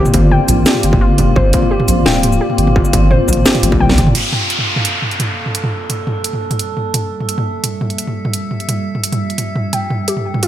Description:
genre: half-time drum and bass.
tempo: 172 BPM.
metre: 4/4.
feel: half-time.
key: G dorian.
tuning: A4 = 440 Hz.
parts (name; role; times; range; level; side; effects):
dark analog pad; sustained chords; 0.0-10.5 s; G3 to D5; -21 LUFS; left 1 dB; chorus, sidechain pumping.
warbly dusty pluck; arpeggios; 0.0-3.9, 9.7-10.5 s; F4 to G5; -20 LUFS; left 2 dB; chorus, vintage 12-bit sampler grit, digital delay.
deep soft wobble bass; bass; 0.0-4.1 s; D1 to C2; -14 LUFS; equal; chorus.
metallic inharmonic drone; texture; 0.1-10.5 s; F4 to E5; -24 LUFS; left 1 dB; chorus, built-in reverb.
drum and bass drum kit; drums; 0.1-10.5 s; crash cymbal, hi-hat, shaker, snare drum, toms; -17 LUFS; right 1 dB; overdrive, studio reverb.
electronic kick drum; drums; 0.1-4.1 s; none; -16 LUFS; equal; distortion, studio reverb.
downlifter; sound effects; 4.2-6.9 s; none; -20 LUFS; equal; none.
room: light reverb, digital ambience.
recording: none.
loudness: -12 LUFS.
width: side -12 dB against mid.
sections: 0.0-4.2 A section; 4.2-10.5 B section.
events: drop 0.0-4.2; drum fill 3.6-4.2; filter sweep on analog synth pad 4.2-10.5.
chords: 0.0 Gm; 4.2 Gmadd9.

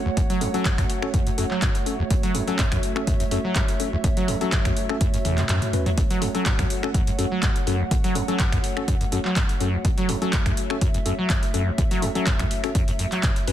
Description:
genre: acid house.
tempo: 124 BPM.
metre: 4/4.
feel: swing 53% on 16ths.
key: F# minor.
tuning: A4 = 440 Hz.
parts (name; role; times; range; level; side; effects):
dark analog pad; sustained chords; 0.0-13.5 s; A3 to F#5; -30 LUFS; right 2 dB; chorus, sidechain pumping.
acid bass, saw; riff; 0.1-13.5 s; E2 to F#3; -26 LUFS; right 1 dB; overdrive, lush chorus, ping-pong delay.
electro analog drum machine; drums; 0.2-13.5 s; finger snaps, handclaps, hi-hat, toms; -29 LUFS; equal; none.
electronic kick drum; drums; 0.2-13.3 s; none; -24 LUFS; equal; none.
tine electric piano; stabs; 0.4-13.5 s; C#4 to B4; -30 LUFS; left 6 dB; medium stereo tremolo, ping-pong delay.
room: digital ambience.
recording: dense, heavily limited modern master.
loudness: -20 LUFS.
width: side -11 dB against mid.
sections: 0.0-13.5 A section.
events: drum fill 5.2-6.0; kick drops out 5.5-6.0.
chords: 0.0 F#m.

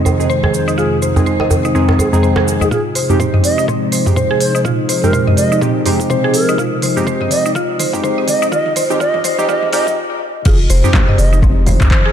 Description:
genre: afro house.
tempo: 124 BPM.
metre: 4/4.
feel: swing 58% on 16ths.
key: F minor.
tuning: A4 = 441 Hz.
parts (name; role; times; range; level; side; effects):
warm analog pad; sustained chords; 0.0-12.1 s; F2 to Eb4; -20 LUFS; equal; chorus, sidechain pumping.
warm analog keys; stabs; 0.0-11.9 s; F2 to Ab4; -19 LUFS; right 1 dB; chorus, phaser, sidechain pumping, low-pass filter, ping-pong delay.
mallet-like synth pluck; arpeggios; 0.1-12.1 s; C4 to Eb5; -19 LUFS; equal; chorus, cassette tape, sidechain pumping, ping-pong delay.
deep house drum kit; drums; 0.1-12.0 s; crash cymbal, handclaps, hi-hat, shaker, toms; -18 LUFS; right 1 dB; none.
djembe; percussion; 0.1-2.7 s; none; -18 LUFS; right 1 dB; none.
bass bansuri; melody; 0.5-11.4 s; Ab4 to Eb5; -20 LUFS; right 1 dB; ping-pong delay.
electronic kick drum; drums; 2.7-12.0 s; none; -15 LUFS; equal; high-pass filter on kick.
warm sub bass; bass; 10.5-11.9 s; F1 to C2; -13 LUFS; equal; sidechain pumping.
congas; percussion; 10.5-12.0 s; none; -20 LUFS; left 2 dB; none.
room: moderate lush hall reverb, RT60 2.1 s.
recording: dark, warm production, high-pass filter.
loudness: -12 LUFS.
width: side -9 dB against mid.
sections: 0.0-2.7 A section; 2.7-10.5 B section; 10.5-12.1 C section.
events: filter sweep on synth keys 0.0-2.7, 2.7-10.5; build-up 2.7-10.5; drum fill 2.7-10.0; filter sweep on analog synth pad 2.7-10.5; stop 10.0-10.5; drop 10.5-12.1.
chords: 0.0 Ab/F; 2.7 Fm7.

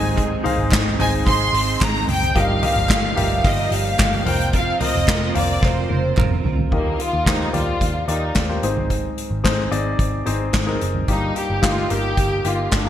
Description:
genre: piano-driven pop.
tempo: 110 BPM.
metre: 4/4.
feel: straight.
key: Eb major.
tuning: A4 = 439 Hz.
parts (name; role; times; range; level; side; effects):
warm studio violin section; melody; 0.0-12.9 s; Bb3 to C6; -23 LUFS; equal; none.
clear baby grand piano; accompaniment; 0.0-12.9 s; G2 to F5; -25 LUFS; left 2 dB; none.
lush unison pad; sustained chords; 0.0-6.7 s; F3 to Eb4; -32 LUFS; right 1 dB; chorus.
direct-recorded clean electric guitar; riff; 0.0-6.7 s; G2 to Bb4; -28 LUFS; right 7 dB; ensemble chorus.
vintage muted picked electric bass; bass; 0.0-12.9 s; F1 to Eb2; -24 LUFS; equal; none.
soft-mallet drum kit; drums; 0.2-12.9 s; crash cymbal, handclaps, hi-hat, kick drum, snare drum, toms; -21 LUFS; equal; gated reverb.
group handclap; percussion; 0.7-6.3 s; none; -36 LUFS; right 4 dB; none.
room: moderate lush hall reverb, RT60 1.7 s, small room ambience.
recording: bright 1980s-style digital production.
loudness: -17 LUFS.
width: side -11 dB against mid.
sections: 0.0-6.7 A section; 6.7-12.9 B section.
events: drum fill 5.6-6.7.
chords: 0.0 Ab; 2.4 Ebadd9/G; 4.3 Bbsus2/F; 6.7 Ebadd9; 8.6 Ab; 11.1 Ebadd9/G.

